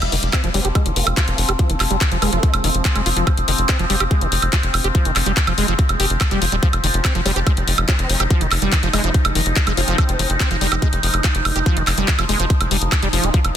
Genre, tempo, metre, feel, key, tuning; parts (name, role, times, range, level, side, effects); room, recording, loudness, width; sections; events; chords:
psychedelic trance; 143 BPM; 4/4; straight; F minor; A4 = 440 Hz
overtone-sweeping drone; sustained chords; 0.0-13.6 s; F3 to Eb4; -24 LUFS; equal; chorus, built-in reverb, sidechain pumping
tight sequencer bass; bass; 0.0-13.5 s; Eb1 to F1; -21 LUFS; equal
garage drum kit; drums; 0.0-13.5 s; handclaps, hi-hat, woodblock; -21 LUFS; equal
liquid acid bass; riff; 0.1-13.4 s; Eb3 to G4; -24 LUFS; moving between left 3 dB and right 4 dB; chorus, auto-pan, sidechain pumping, dub echo
electronic kick drum; drums; 0.3-13.4 s; -17 LUFS; equal
vowel-sweep wobble bass; second line; 0.5-2.5, 7.3-10.4 s; Bb3 to Eb4; -33 LUFS; right 2 dB; chorus, sidechain pumping, high-pass filter, dub echo
digital ambience; dense, heavily limited modern master; -15 LUFS; side -10 dB against mid
0.0-13.6 A section
0.0 F5